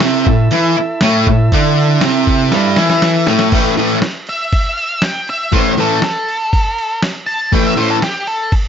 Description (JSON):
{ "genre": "garage rock duo or trio", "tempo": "120 BPM", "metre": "4/4", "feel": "straight", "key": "unclear", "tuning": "A4 = 444 Hz", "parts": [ { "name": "combo organ", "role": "sustained chords", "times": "0.0-3.5 s", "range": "E4 to E5", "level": "-20 LUFS", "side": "right 3 dB", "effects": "none" }, { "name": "fuzz guitar", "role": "riff", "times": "0.0-8.0 s", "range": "G2 to E4", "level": "-12 LUFS", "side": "equal", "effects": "distortion" }, { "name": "lo-fi sampler-style drum kit", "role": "drums", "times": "0.0-8.6 s", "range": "crash cymbal, hi-hat, kick drum, snare drum", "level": "-18 LUFS", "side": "equal", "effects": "none" }, { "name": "octave-fuzz lead guitar", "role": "melody", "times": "4.3-8.5 s", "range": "G4 to A5", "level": "-17 LUFS", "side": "equal", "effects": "distortion" } ], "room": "light reverb", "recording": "nothing above 7.6 kHz", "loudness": "-12 LUFS", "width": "side -8 dB against mid", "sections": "0.0-3.5 A section; 3.5-8.7 B section", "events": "drum fill 2.5-3.5; lead electric guitar solo 3.5-8.7", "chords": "0.0 A5" }